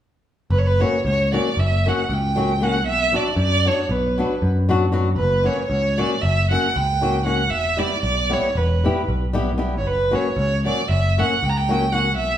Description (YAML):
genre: balkan folk, Balkan wedding band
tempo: 232 BPM (eighths)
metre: 9/8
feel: straight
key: F# phrygian dominant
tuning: A4 = 440 Hz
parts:
  - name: warm violin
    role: melody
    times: 0.5-12.4 s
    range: B4 to A#5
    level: -21 LUFS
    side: right 2 dB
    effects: none
  - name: picked electric bass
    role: bass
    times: 0.5-12.4 s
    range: E1 to F#2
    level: -21 LUFS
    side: equal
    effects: none
  - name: flamenco guitar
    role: accompaniment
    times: 0.8-12.1 s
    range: F#3 to G4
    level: -24 LUFS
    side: left 3 dB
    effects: none
room: wet large studio reverb, RT60 1.3 s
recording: band playing live in one room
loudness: -18 LUFS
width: side -10 dB against mid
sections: 0.5-12.4 A section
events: none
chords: 0.5 F#; 2.8 Bm; 5.2 F#; 7.5 Em; 9.8 F#